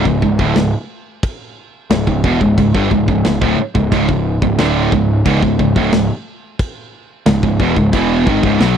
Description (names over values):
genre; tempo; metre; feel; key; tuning
heavy metal; 89 BPM; 4/4; straight; unclear; A4 = 440 Hz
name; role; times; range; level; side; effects
crunchy overdriven guitar; riff; 0.0-8.8 s; C#2 to F#3; -19 LUFS; equal; none
high-gain distorted guitar; riff; 0.0-8.8 s; C#2 to F#3; -17 LUFS; right 8 dB; distortion
sludgy distorted guitar; riff; 0.0-8.8 s; C#2 to F#3; -19 LUFS; left 9 dB; overdrive
fuzz picked electric bass; bass; 0.0-8.8 s; C#1 to B1; -19 LUFS; equal; overdrive
big rock drum kit; drums; 0.1-8.8 s; crash cymbal, kick drum, snare drum; -19 LUFS; equal; none
room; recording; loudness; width
little or no reverb; dry, close 1970s-style studio recording; -12 LUFS; side -8 dB against mid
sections
0.0-8.8 A section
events
none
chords
0.0 C#m